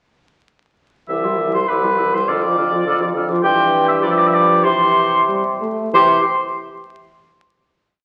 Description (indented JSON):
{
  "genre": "quick classical-period movement for wind quintet",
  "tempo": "90-105 BPM",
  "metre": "2/4",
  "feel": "rubato",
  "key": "C major",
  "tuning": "A4 = 440 Hz",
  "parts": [
    { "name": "mellow concert flute", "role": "melody", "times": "1.1-6.3 s", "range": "B5 to F6", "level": "-25 LUFS", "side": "equal", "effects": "none" },
    { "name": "warm oboe", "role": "second line", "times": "1.1-6.2 s", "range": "B4 to G5", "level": "-20 LUFS", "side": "equal", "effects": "none" },
    { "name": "clear clarinet", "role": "accompaniment", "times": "1.1-6.2 s", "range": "E4 to A4", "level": "-24 LUFS", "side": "equal", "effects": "none" },
    { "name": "warm French horn", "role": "accompaniment", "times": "1.1-6.2 s", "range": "D3 to A3", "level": "-26 LUFS", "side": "equal", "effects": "none" },
    { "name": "warm bassoon", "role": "bass", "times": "1.1-6.2 s", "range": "C2 to C3", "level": "-24 LUFS", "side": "equal", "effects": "none" }
  ],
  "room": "wet recital hall reverb, RT60 1.4 s",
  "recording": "very old 78 rpm record, vinyl crackle",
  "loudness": "-16 LUFS",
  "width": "mono",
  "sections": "1.1-5.9 A section; 5.9-7.2 final chord",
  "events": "slowing down 2.9-5.9",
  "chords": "1.1 C; 2.3 Dm/F; 3.4 C/G; 4.0 G7; 4.7 C",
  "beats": "| 1.09 1.69 | 2.28 2.86 | 3.43 4.03 | 4.65 5.29 | 5.94"
}